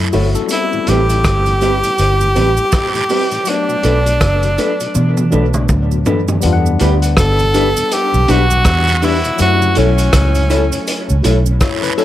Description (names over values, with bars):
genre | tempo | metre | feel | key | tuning
lovers rock reggae | 81 BPM | 4/4 | swing 60% on 16ths | E minor | A4 = 440 Hz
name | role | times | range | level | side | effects
barky tine electric piano | accompaniment | 0.0-12.0 s | F#3 to F#5 | -22 LUFS | moving between left 9 dB and left 1 dB | overdrive, auto-pan, dub echo
mellow tonewheel organ | accompaniment | 0.0-12.0 s | E2 to E4 | -27 LUFS | left 2 dB | none
vintage muted fingered electric bass | bass | 0.0-11.6 s | F#1 to B2 | -14 LUFS | equal | none
electric guitar through a small old amp | stabs | 0.1-12.0 s | C4 to C#5 | -21 LUFS | equal | dub echo
vintage drum kit | drums | 0.1-12.0 s | hi-hat, kick drum, rim click, toms | -18 LUFS | equal | none
cabasa and guiro | percussion | 0.1-12.0 s | none | -27 LUFS | right 8 dB | dub echo
bright tenor saxophone | melody | 0.5-11.2 s | C#4 to A4 | -16 LUFS | equal | tape echo
room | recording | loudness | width
light reverb, small room ambience | none | -11 LUFS | side -13 dB against mid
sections
0.0-6.4 A section; 6.4-12.0 B section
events
drum fill 5.0-6.4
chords
0.0 F#m7; 0.5 Am9; 3.5 Bm7; 6.4 Em7; 9.4 F#m7